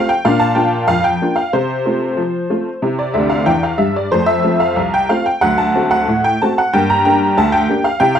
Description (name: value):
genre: ragtime piano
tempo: 93 BPM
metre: 2/4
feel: straight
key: F major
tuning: A4 = 440 Hz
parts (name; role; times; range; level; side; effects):
- honky-tonk upright piano; solo; 0.0-8.2 s; C2 to Bb5; -13 LUFS; equal; none
room: light reverb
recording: none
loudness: -13 LUFS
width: side -8 dB against mid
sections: 0.0-8.2 A section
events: honky-tonk piano fill 3.2-4.1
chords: 0.2 Bb; 1.5 F/C; 2.8 C; 4.1 F; 5.4 D7; 6.7 Gm